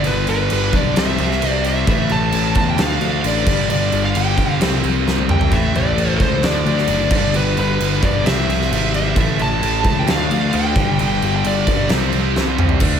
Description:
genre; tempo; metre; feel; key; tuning
hard rock; 132 BPM; 4/4; straight; unclear; A4 = 441 Hz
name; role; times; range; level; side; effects
smooth overdriven lead guitar; melody; 0.0-11.9 s; A4 to A5; -22 LUFS; left 1 dB; slapback echo
high-gain distorted guitar; riff; 0.0-13.0 s; G2 to D4; -23 LUFS; right 11 dB; distortion, slapback echo
sludgy distorted guitar; riff; 0.0-13.0 s; G2 to D4; -23 LUFS; left 10 dB; overdrive
modern bright picked electric bass; bass; 0.0-13.0 s; F#1 to E2; -21 LUFS; equal; none
huge arena drum kit; drums; 0.0-12.9 s; crash cymbal, kick drum, snare drum, toms; -20 LUFS; right 1 dB; none
room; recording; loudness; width
moderate lush hall reverb, RT60 1.6 s, small room ambience; big arena sound; -15 LUFS; side -8 dB against mid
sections
0.0-12.8 A section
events
drum fill 5.1-5.5, 12.4-12.8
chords
0.0 G; 1.0 C; 1.9 A5; 2.8 Dm; 3.5 G5; 4.6 C5; 5.5 A5; 6.4 D5; 7.1 G; 8.3 C; 9.2 A5; 10.1 Dm; 10.8 G5; 11.9 C5

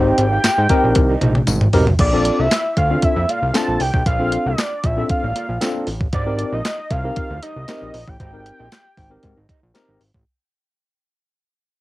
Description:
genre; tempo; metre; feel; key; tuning
early-eighties boogie funk; 116 BPM; 4/4; straight; unclear; A4 = 439 Hz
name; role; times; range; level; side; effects
fat analog lead; melody; 0.0-9.8 s; D5 to A5; -22 LUFS; equal; chorus, cassette tape
tine electric piano; accompaniment; 0.0-10.0 s; C4 to C5; -20 LUFS; left 2 dB; medium stereo tremolo, cassette tape
mellow electric guitar; riff; 0.0-10.2 s; Bb3 to F5; -30 LUFS; right 4 dB; lush chorus, cassette tape
fat analog bass; bass; 0.0-10.2 s; Ab1 to Ab2; -21 LUFS; equal; none
crisp 8-bit digital drum machine; drums; 0.2-10.3 s; crash cymbal, handclaps, hi-hat, kick drum, snare drum, toms; -20 LUFS; equal; overdrive, cassette tape
tambourine; percussion; 0.4-9.9 s; none; -31 LUFS; left 5 dB; none
room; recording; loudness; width
light reverb; home recording on cassette; -16 LUFS; side -18 dB against mid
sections
0.0-2.0 A section; 2.0-10.3 B section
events
drum fill 1.0-2.0; fade-out 2.0-10.3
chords
0.0 Abmaj7; 2.0 Bbmaj7; 6.1 Abmaj7

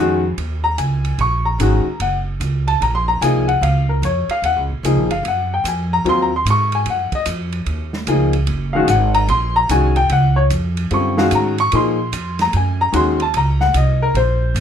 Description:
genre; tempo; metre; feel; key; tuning
modal jazz; 148 BPM; 4/4; swing 65% on 8ths; Eb dorian; A4 = 439 Hz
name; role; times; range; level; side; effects
clear upright piano; accompaniment; 0.0-14.6 s; D3 to Db6; -17 LUFS; left 3 dB; none
upright bass; bass; 0.0-14.6 s; Gb1 to Bb2; -18 LUFS; right 1 dB; none
open jazz drum kit; drums; 0.4-14.6 s; hi-hat, kick drum, ride cymbal, snare drum; -29 LUFS; right 5 dB; none
room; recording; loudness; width
light reverb; minimal, uncompressed stereo recording; -15 LUFS; side -8 dB against mid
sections
0.0-14.6 A section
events
none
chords
0.0 Ebm11

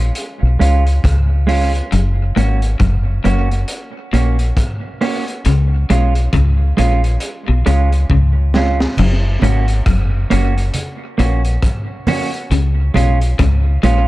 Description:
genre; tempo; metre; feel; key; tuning
roots reggae; 68 BPM; 4/4; swing 59% on 16ths; F# major; A4 = 440 Hz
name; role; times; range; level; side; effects
deep dub fingered electric bass; bass; 0.0-14.1 s; F#1 to C#2; -14 LUFS; equal; none
crunchy breakbeat drum kit; drums; 0.2-14.1 s; crash cymbal, hi-hat, kick drum, rim click, snare drum; -22 LUFS; equal; tape echo
clean electric guitar; accompaniment; 0.6-14.1 s; G#3 to F#4; -20 LUFS; right 4 dB; tube saturation, tape echo
clean electric guitar; riff; 1.9-14.1 s; F#2 to C#3; -22 LUFS; left 5 dB; none
congas; percussion; 9.0-13.2 s; none; -24 LUFS; right 2 dB; none
room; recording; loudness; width
light reverb, studio reverb; dark, warm production; -13 LUFS; side -18 dB against mid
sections
0.0-9.0 A section; 9.0-14.1 B section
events
drum fill 8.1-9.0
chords
0.0 C#; 1.9 F#; 5.5 C#; 9.0 F#; 12.5 C#

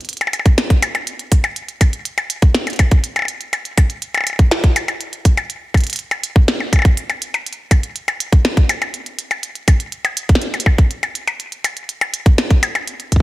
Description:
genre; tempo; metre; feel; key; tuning
IDM; 122 BPM; 4/4; straight; none; none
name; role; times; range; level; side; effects
glitchy drum kit; drums; 0.0-13.2 s; hi-hat, percussion blips, snare drum; -19 LUFS; left 1 dB; small room reverb, tape echo
electronic kick drum; drums; 0.5-13.2 s; none; -11 LUFS; equal; small room reverb
room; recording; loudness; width
digital ambience; none; -14 LUFS; side -18 dB against mid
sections
0.0-13.2 A section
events
none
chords
none

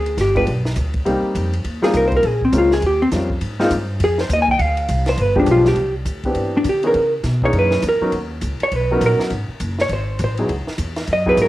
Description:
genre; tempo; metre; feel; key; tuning
jazz, small-group swing and bop; 204 BPM; 4/4; swing 61% on 8ths; unclear; A4 = 439 Hz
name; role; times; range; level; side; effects
vintage hollow-body jazz guitar; melody; 0.0-11.5 s; C4 to Ab5; -17 LUFS; equal; cassette tape
upright bass; bass; 0.0-11.5 s; Gb1 to D3; -21 LUFS; equal; none
compact cocktail drum kit; drums; 0.1-11.5 s; hi-hat, kick drum, ride cymbal, snare drum; -28 LUFS; equal; none
warm upright piano; accompaniment; 0.4-11.5 s; E3 to Bb4; -21 LUFS; left 1 dB; none
room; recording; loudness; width
moderate spring reverb, RT60 1.3 s, studio reverb; home recording on cassette; -16 LUFS; side -16 dB against mid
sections
0.0-5.8 A section; 5.8-11.5 A section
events
hollow-body jazz guitar solo 0.0-11.5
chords
0.0 G; 1.1 Cm7; 2.2 Bbm7; 2.8 Eb13; 3.4 Ab5; 4.6 Dm7; 5.2 G7b9; 5.8 Cmaj9; 6.9 Dbm9; 7.5 Gb13; 8.1 Bmaj7; 9.3 Ab7b9; 10.5 Dbm11

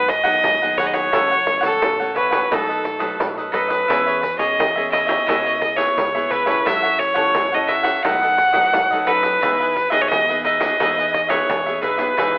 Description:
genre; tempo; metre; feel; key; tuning
samba and choro; 87 BPM; 4/4; straight; E major; A4 = 440 Hz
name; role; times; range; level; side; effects
clear fiddle; melody; 0.0-12.4 s; A4 to F#5; -17 LUFS; equal; none
cavaquinho; accompaniment; 0.0-12.4 s; D#4 to F#5; -23 LUFS; right 1 dB; none
nylon-string guitar; accompaniment; 0.0-12.4 s; F#2 to A4; -30 LUFS; left 1 dB; none
fingered electric bass; bass; 0.0-12.4 s; F#1 to F#2; -42 LUFS; equal; none
pandeiro; percussion; 0.1-12.4 s; none; -24 LUFS; right 1 dB; none
room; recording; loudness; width
moderate studio reverb, RT60 0.7 s; telephone sound; -16 LUFS; side -25 dB against mid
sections
0.0-12.4 A section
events
none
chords
0.0 G#m7; 1.1 F#m7; 2.5 B7; 3.9 E6; 5.3 C#m7; 6.7 F#m7; 8.0 B7; 9.4 Emaj7

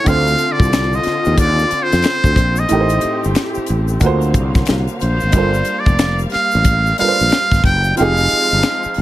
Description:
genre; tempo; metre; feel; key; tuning
R&B, neo-soul; 91 BPM; 4/4; swing 62% on 16ths; unclear; A4 = 441 Hz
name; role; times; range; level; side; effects
trumpet with metal mute; melody; 0.0-9.0 s; C5 to G5; -16 LUFS; right 1 dB; slapback echo
warm upright piano; accompaniment; 0.0-9.0 s; A2 to C5; -21 LUFS; right 3 dB; none
warm studio string section; sustained chords; 0.0-9.0 s; D3 to E#5; -25 LUFS; left 3 dB; none
sustaining fretless electric bass; bass; 0.1-9.0 s; F1 to F2; -17 LUFS; equal; none
tight funk drum kit; drums; 0.1-9.0 s; hi-hat, kick drum, snare drum; -16 LUFS; left 1 dB; none
egg shaker and finger snaps; percussion; 0.1-8.9 s; none; -32 LUFS; left 8 dB; none
room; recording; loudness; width
light reverb; none; -13 LUFS; side -15 dB against mid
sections
0.0-9.0 A section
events
none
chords
0.1 Dm7; 2.7 Am7b5; 4.0 D7alt; 5.3 Gm11; 8.0 Fm7

